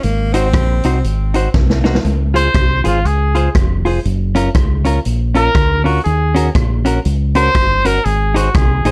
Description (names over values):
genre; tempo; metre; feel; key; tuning
ska; 120 BPM; 4/4; swing 60% on 8ths; Db major; A4 = 439 Hz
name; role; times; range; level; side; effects
bright tenor saxophone; melody; 0.0-1.0 s; Bb3 to C4; -26 LUFS; equal; analog delay
fingered electric bass; bass; 0.0-8.9 s; F1 to Eb2; -18 LUFS; equal; none
swinging big-band drum kit; drums; 0.0-8.9 s; hi-hat, kick drum, rim click, snare drum; -20 LUFS; equal; none
clean electric guitar; accompaniment; 0.3-8.9 s; Db4 to C5; -20 LUFS; equal; none
warm trumpet; melody; 2.4-8.9 s; F4 to C5; -19 LUFS; equal; none
room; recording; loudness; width
little or no reverb; none; -15 LUFS; mono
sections
0.0-2.0 A section; 2.0-8.9 B section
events
drum fill 1.5-2.0; trumpet solo 2.0-8.9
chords
0.0 Ab7; 2.0 Dbmaj7; 4.0 Gbmaj7; 6.1 Ebm7; 8.1 Ab